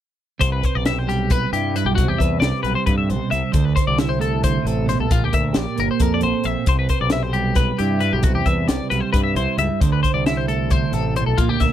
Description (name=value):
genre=math rock and midwest emo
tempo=268 BPM (eighths)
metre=7/8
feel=straight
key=C major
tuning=A4 = 441 Hz
part: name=twelve-string electric guitar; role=accompaniment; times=0.4-11.7 s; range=G2 to C5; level=-23 LUFS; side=right 7 dB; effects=none
part: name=twelve-string electric guitar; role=arpeggios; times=0.4-11.7 s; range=F4 to E5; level=-23 LUFS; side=left 7 dB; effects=wide subtle chorus
part: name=growling fingered electric bass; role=bass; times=0.4-11.7 s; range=G1 to G2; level=-23 LUFS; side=left 1 dB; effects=overdrive
part: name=crisp fusion drum kit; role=drums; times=0.4-11.7 s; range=hi-hat, kick drum, snare drum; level=-21 LUFS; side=left 1 dB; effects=none
room=little or no reverb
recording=none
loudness=-17 LUFS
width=side -11 dB against mid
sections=0.4-11.7 A section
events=none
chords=0.4 Cmaj7; 3.5 Dsus2; 5.1 Bb69; 6.7 Cmaj7; 9.8 Dsus2